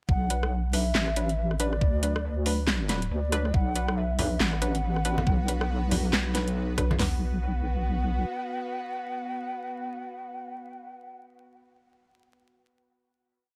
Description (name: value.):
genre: deep dubstep.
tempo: 139 BPM.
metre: 4/4.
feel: swing 60% on 16ths, half-time.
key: B minor.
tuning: A4 = 439 Hz.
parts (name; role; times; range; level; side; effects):
breathy mellow low ney; melody; 0.1-11.2 s; D5 to F#5; -37 LUFS; equal; dub echo.
deep soft wobble bass; bass; 0.1-8.2 s; A1 to D2; -30 LUFS; equal; chorus.
dubstep drum kit; drums; 0.1-7.1 s; hi-hat, kick drum, snare drum, toms; -28 LUFS; equal; none.
filtered dub chord stab; stabs; 0.3-11.3 s; F#3 to B4; -37 LUFS; equal; chorus, dub echo.
dubstep drum kit; drums; 0.3-7.0 s; handclaps, hi-hat, rim click, snare drum; -32 LUFS; equal; none.
bowed-like drone; sustained chords; 4.7-11.2 s; B3 to B4; -41 LUFS; equal; built-in reverb.
congas; percussion; 4.2-7.0 s; none; -34 LUFS; equal; none.
room: little or no reverb.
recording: vinyl crackle.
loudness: -28 LUFS.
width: mono.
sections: 0.1-7.0 drop; 7.0-10.4 final chord.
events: drop 0.1-7.0.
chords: 0.1 Bm.